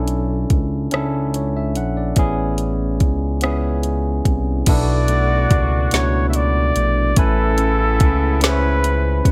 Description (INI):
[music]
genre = slow six-eight R&B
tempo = 48 BPM (dotted quarters)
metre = 6/8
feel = straight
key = B dorian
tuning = A4 = 440 Hz
[part]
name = barky tine electric piano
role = accompaniment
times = 0.0-9.3 s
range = B3 to G#5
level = -26 LUFS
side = equal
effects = overdrive
[part]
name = smooth gliding synth bass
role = bass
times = 0.0-9.3 s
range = A1 to C#2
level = -22 LUFS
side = equal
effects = none
[part]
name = smooth R&B drum kit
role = drums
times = 0.1-9.3 s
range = crash cymbal, hi-hat, kick drum, rim click, snare drum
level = -20 LUFS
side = equal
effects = none
[part]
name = warm flugelhorn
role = melody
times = 4.7-9.3 s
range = A4 to E5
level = -23 LUFS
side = equal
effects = none
[part]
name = clean electric guitar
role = second line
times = 4.7-9.3 s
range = B2 to B4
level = -28 LUFS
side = equal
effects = none
[part]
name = mellow horn section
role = stabs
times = 4.7-9.2 s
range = C#3 to F#4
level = -31 LUFS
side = equal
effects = none
[sound]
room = digital ambience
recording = none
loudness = -18 LUFS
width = mono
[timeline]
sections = 0.0-4.7 A section; 4.7-9.3 B section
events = none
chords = 0.0 Bm11; 2.2 Amaj9; 4.7 Bm11; 7.2 Amaj9